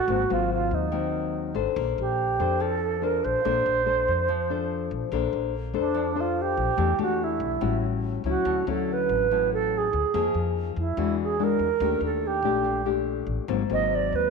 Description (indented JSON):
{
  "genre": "bossa nova",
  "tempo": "143 BPM",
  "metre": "4/4",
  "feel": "straight",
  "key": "unclear",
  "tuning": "A4 = 439 Hz",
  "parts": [
    { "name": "reedy alto flute", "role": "melody", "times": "0.0-14.3 s", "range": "D4 to Eb5", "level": "-25 LUFS", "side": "right 8 dB", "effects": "none" },
    { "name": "nylon-string guitar", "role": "accompaniment", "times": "0.0-14.3 s", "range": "Ab2 to C5", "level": "-27 LUFS", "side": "left 12 dB", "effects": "none" },
    { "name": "upright bass", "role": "bass", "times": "0.1-14.3 s", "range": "Ab1 to F2", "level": "-31 LUFS", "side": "left 1 dB", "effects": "none" }
  ],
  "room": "wet echo chamber reverb, RT60 1.4 s, small room ambience",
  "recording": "1960s-style stereo with parts hard left and right",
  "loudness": "-23 LUFS",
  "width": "side -4 dB against mid",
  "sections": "0.0-5.1 A section; 5.1-14.3 B section",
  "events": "alto flute solo 5.1-14.3",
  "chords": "0.1 Ab9; 1.8 Bbmaj9; 6.8 Em7; 7.6 A6; 8.5 Dmaj9; 10.1 Fm7; 11.0 E9; 11.8 Ebmaj7#11; 13.5 Ab9"
}